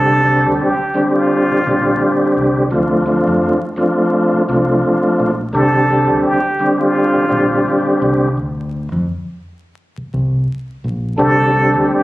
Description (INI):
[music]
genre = hip hop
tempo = 85 BPM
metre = 4/4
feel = swing 55% on 16ths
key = unclear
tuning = A4 = 440 Hz
[part]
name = trumpet with plunger mute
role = melody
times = 0.0-12.0 s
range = F4 to A4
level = -17 LUFS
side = right 1 dB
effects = high-pass filter, low-pass filter, analog delay
[part]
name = tonewheel organ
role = accompaniment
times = 0.0-12.0 s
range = D3 to G4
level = -14 LUFS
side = equal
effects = chorus vibrato, fast rotary speaker, cassette tape, high-pass filter, low-pass filter
[part]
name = deep dub fingered electric bass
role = bass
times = 0.0-11.9 s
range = Bb1 to F2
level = -20 LUFS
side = equal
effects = none
[sound]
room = light reverb, small room ambience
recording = recorded on a phone in the room, club reverb, vinyl crackle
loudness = -13 LUFS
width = side -17 dB against mid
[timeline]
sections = 0.0-12.0 A section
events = break 8.4-11.2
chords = 0.0 Csus2; 2.7 Dm7; 5.5 Csus2; 8.4 D7(no3); 11.2 Csus2